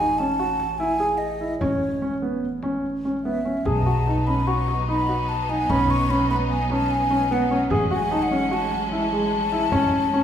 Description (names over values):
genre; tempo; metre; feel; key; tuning
contemporary instrumental, chamber music in an uneven meter; 148 BPM; 5/4; straight; unclear; A4 = 440 Hz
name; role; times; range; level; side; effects
breathy mellow concert flute; melody; 0.0-10.2 s; C#5 to C#6; -24 LUFS; left 1 dB; none
dark baby grand piano; arpeggios; 0.0-10.2 s; G#3 to G#4; -24 LUFS; equal; none
upright bass; bass; 0.0-10.2 s; A1 to B1; -28 LUFS; right 1 dB; none
frame drum; percussion; 0.6-10.2 s; none; -32 LUFS; left 1 dB; none
bright studio string section; sustained chords; 3.7-10.2 s; F#3 to D#4; -30 LUFS; right 1 dB; none
room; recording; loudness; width
wet recital hall reverb, RT60 1.6 s; recorded in a church or concert hall; -20 LUFS; side -9 dB against mid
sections
0.0-10.2 A section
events
none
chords
0.0 A; 3.7 B7; 7.7 Amaj7